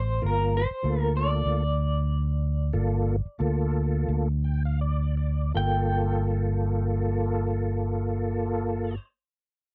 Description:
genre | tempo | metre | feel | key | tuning
straight-eighth soul blues | 78-98 BPM | 4/4 | swing 56% on 16ths | G minor | A4 = 440 Hz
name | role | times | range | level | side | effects
electric guitar through a small old amp | melody | 0.0-9.0 s | Bb4 to G5 | -33 LUFS | equal | tremolo
fingered electric bass | bass | 0.0-9.0 s | G1 to D2 | -28 LUFS | equal | none
tonewheel organ | accompaniment | 0.2-9.0 s | Bb3 to G5 | -32 LUFS | equal | chorus vibrato, slow rotary speaker
room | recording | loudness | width
little or no reverb | dry, close 1970s-style studio recording | -26 LUFS | mono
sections
0.0-5.5 A section; 5.5-8.6 B section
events
slowing down 0.2-5.5; tonewheel organ fill 4.1-5.5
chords
0.2 Gm7

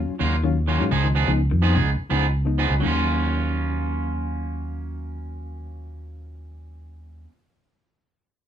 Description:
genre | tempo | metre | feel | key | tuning
afrobeat | 126 BPM | 4/4 | straight | Eb minor | A4 = 440 Hz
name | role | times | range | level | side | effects
reed electric piano | accompaniment | 0.0-7.3 s | F3 to F4 | -30 LUFS | left 5 dB | overdrive, fast tremolo
fingered electric bass | bass | 0.0-7.2 s | Db2 to Ab2 | -24 LUFS | equal | none
clean electric guitar | arpeggios | 0.2-3.0 s | Db3 to F3 | -30 LUFS | left 10 dB | spring reverb
electric guitar at the edge of break-up | stabs | 0.2-7.3 s | F3 to Ab4 | -26 LUFS | right 4 dB | none
room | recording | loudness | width
moderate studio reverb, RT60 0.6 s | band playing live in one room | -20 LUFS | side -10 dB against mid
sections
0.0-2.8 A section; 2.8-6.6 B section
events
none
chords
0.0 Ebm9; 0.9 Db9; 2.8 Ebm9

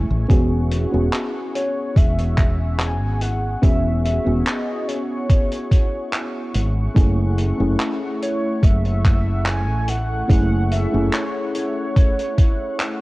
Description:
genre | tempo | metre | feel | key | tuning
vaporwave | 72 BPM | 4/4 | straight | E major | A4 = 440 Hz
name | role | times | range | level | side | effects
mellow FM electric piano | accompaniment | 0.0-13.0 s | A3 to G#4 | -24 LUFS | equal | lush chorus, cassette tape, analog delay
lush unison pad | sustained chords | 0.0-13.0 s | A3 to C#6 | -32 LUFS | equal | chorus
woody fretless electric bass | bass | 0.0-11.1 s | E1 to A1 | -20 LUFS | equal | none
electronic kick drum | drums | 0.3-12.6 s | none | -15 LUFS | equal | none
vintage drum kit | drums | 0.3-13.0 s | handclaps, hi-hat | -29 LUFS | equal | none
warm velvety synth lead | melody | 1.6-13.0 s | C#5 to G#5 | -28 LUFS | equal | chorus, vintage 12-bit sampler grit, tape echo
room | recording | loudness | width
light reverb | worn, warbling old tape, cassette tape, warbly pitch drift | -17 LUFS | side -20 dB against mid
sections
0.0-13.0 A section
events
none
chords
0.3 E69; 7.0 F#m7

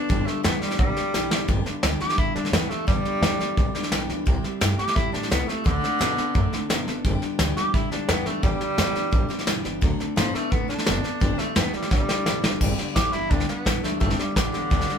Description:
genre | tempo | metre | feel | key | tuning
rockabilly | 172 BPM | 4/4 | straight | G major | A4 = 440 Hz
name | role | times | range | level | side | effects
clear tenor saxophone | melody | 0.0-15.0 s | D3 to G4 | -27 LUFS | equal | none
picked steel-string acoustic guitar | accompaniment | 0.0-15.0 s | G2 to A4 | -32 LUFS | left 5 dB | none
electric guitar through a small old amp | riff | 0.0-15.0 s | G2 to B3 | -32 LUFS | right 3 dB | none
upright bass | bass | 0.1-14.9 s | F#1 to C3 | -29 LUFS | equal | none
soft brush drum kit | drums | 0.1-14.9 s | crash cymbal, hi-hat, kick drum, snare drum | -24 LUFS | equal | none
room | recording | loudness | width
moderate studio reverb, RT60 0.5 s | band playing live in one room | -21 LUFS | side -7 dB against mid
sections
0.0-1.5 A section; 1.5-12.6 A section; 12.6-15.0 B section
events
drum fill 1.1-1.5, 11.9-12.6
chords
0.1 G; 4.3 C; 5.7 D7; 7.0 G; 9.8 D7; 11.2 G

